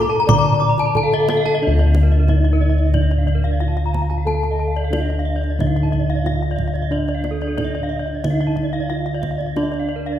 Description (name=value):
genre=Balinese gamelan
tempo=91 BPM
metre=4/4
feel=straight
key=D pelog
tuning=A4 = 439 Hz
part: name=gamelan-type bronze metallophone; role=melody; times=0.0-10.2 s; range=D4 to D5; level=-25 LUFS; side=equal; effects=none
part: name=gamelan-type bronze metallophone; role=arpeggios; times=0.0-10.1 s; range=Bb4 to D6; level=-25 LUFS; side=left 3 dB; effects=none
part: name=gamelan-type bronze metallophone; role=arpeggios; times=0.0-10.2 s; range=A4 to D6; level=-29 LUFS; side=right 4 dB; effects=none
part: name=gamelan-type bossed gongs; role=bass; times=0.0-10.2 s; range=D2 to Bb4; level=-18 LUFS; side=equal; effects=none
part: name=kendang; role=percussion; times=0.3-9.8 s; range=none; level=-25 LUFS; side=right 2 dB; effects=none
room=wet concert hall reverb, RT60 1.8 s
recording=heard from further back in the room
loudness=-16 LUFS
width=side -11 dB against mid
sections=0.0-1.6 A section; 1.6-10.2 B section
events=none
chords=none